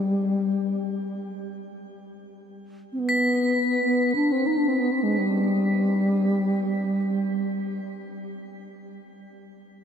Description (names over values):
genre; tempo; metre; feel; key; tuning
world meditative, free-time meditation music; free time; none; none; unclear; A4 = 441 Hz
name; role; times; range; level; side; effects
mellow bass flute; melody; 0.0-7.8 s; G3 to Eb4; -24 LUFS; equal; shimmer reverb, diffuse ambient delay
crotales; texture; 3.1-9.8 s; B6; -29 LUFS; left 1 dB; stereo widening, shimmer reverb
room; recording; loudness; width
wet huge ambient reverb, RT60 7.3 s; none; -21 LUFS; side -8 dB against mid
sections
0.0-9.8 A section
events
none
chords
none